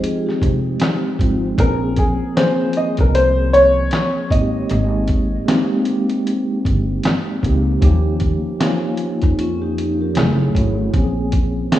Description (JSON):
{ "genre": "lo-fi hip hop", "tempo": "77 BPM", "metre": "4/4", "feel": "swing 62% on 16ths", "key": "Bb dorian", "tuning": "A4 = 439 Hz", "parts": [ { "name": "vibraphone with soft mallets", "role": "second line", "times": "0.0-1.4, 9.2-10.4 s", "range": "Db4 to Bb4", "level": "-25 LUFS", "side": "left 2 dB", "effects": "analog delay" }, { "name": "mellow tine electric piano", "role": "accompaniment", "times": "0.0-11.8 s", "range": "F3 to Ab4", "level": "-20 LUFS", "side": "equal", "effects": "medium stereo tremolo" }, { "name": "lo-fi sampler-style drum kit", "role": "drums", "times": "0.0-11.8 s", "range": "handclaps, hi-hat, kick drum, snare drum", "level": "-19 LUFS", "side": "equal", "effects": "none" }, { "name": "upright bass", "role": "bass", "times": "0.4-11.6 s", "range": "F1 to F2", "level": "-20 LUFS", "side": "equal", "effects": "none" }, { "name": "dark upright piano", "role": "melody", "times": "1.6-5.0 s", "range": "Ab4 to Eb5", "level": "-18 LUFS", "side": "equal", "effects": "none" } ], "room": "light reverb, small room reverb", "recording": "rough home demo mix, studio reverb", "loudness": "-15 LUFS", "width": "side -13 dB against mid", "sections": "0.0-11.8 A section", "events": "none", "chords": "0.0 Fm9; 1.6 Bbm9; 4.3 Abmaj9; 7.8 Eb9; 10.2 Gbm9; 10.9 Bbm9" }